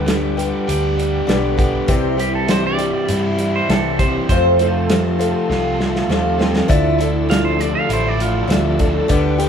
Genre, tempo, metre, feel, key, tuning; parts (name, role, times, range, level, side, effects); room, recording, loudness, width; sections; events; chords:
folk rock and heartland rock; 100 BPM; 4/4; straight; D dorian; A4 = 441 Hz
clean electric guitar; second line; 0.0-9.4 s; F4 to F5; -24 LUFS; right 4 dB
picked twelve-string acoustic guitar; accompaniment; 0.0-9.5 s; F2 to G4; -20 LUFS; left 1 dB
bright tonewheel organ; sustained chords; 0.0-9.5 s; G4 to E6; -30 LUFS; equal; chorus vibrato, fast rotary speaker
crunchy overdriven guitar; riff; 0.0-9.5 s; F2 to G4; -21 LUFS; equal
hollow-body short-scale fingered electric bass; bass; 0.0-9.5 s; A1 to G2; -22 LUFS; equal
damped 70s drum kit; drums; 0.1-9.5 s; hi-hat, kick drum, snare drum; -20 LUFS; right 1 dB
moderate large studio reverb, RT60 1.4 s; band playing live in one room, faint mains hum; -15 LUFS; side -7 dB against mid
0.0-9.5 A section
clean electric guitar solo 0.0-9.5; drum fill 5.5-6.7
0.0 G/D; 1.9 C; 4.3 F; 6.7 Dmadd9